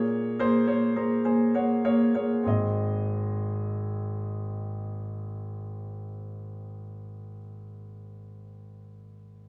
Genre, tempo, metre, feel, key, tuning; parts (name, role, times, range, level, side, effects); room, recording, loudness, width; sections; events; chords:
pop; 97-109 BPM; 4/4; straight; Ab major; A4 = 440 Hz
warm grand piano; accompaniment; 0.0-9.5 s; Ab1 to Bb5; -29 LUFS; equal
wet small room reverb, RT60 0.6 s; band playing live in one room; -27 LUFS; mono
0.0-2.4 A section; 2.4-7.4 B section
slowing down 0.0-2.4; grand piano fill 0.7-2.4
0.0 Bbm7; 2.4 Ab